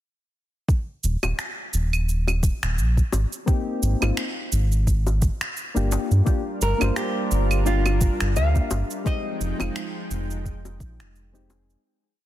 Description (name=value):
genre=sunset chillout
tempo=86 BPM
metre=4/4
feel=swing 56% on 16ths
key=Eb major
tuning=A4 = 439 Hz
part: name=electronic cabasa, claves and finger snaps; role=drums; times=0.7-11.8 s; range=none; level=-30 LUFS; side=right 2 dB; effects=studio ambience, soft clipping on snare
part: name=electronic kick drum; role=drums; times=0.7-11.0 s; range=none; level=-22 LUFS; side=equal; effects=studio ambience
part: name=round analog bass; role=bass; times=1.0-11.8 s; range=Eb1 to G2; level=-22 LUFS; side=equal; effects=none
part: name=bongos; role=percussion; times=1.2-11.7 s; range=none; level=-32 LUFS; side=left 5 dB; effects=none
part: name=soft electric-piano-like synth keys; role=accompaniment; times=3.5-11.8 s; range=Ab3 to C5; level=-29 LUFS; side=moving between left 6 dB and right 5 dB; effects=chorus, auto-pan, ping-pong delay
part: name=lush unison pad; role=sustained chords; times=6.3-11.8 s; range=F3 to G5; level=-32 LUFS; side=equal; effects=chorus
part: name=flamenco guitar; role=melody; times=6.6-10.4 s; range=F4 to F5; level=-29 LUFS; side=left 1 dB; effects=digital delay
room=little or no reverb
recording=dense, heavily limited modern master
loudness=-21 LUFS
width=side -13 dB against mid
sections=0.7-11.8 groove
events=fade-out 8.1-11.8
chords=0.7 Eb5; 3.1 Abmaj7; 5.9 Gm7; 9.1 Fm9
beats=| 0.69 1.38 2.08 2.78 | 3.48 4.17 4.87 5.57 | 6.27 6.96 7.66 8.36 | 9.06 9.76 10.45 11.15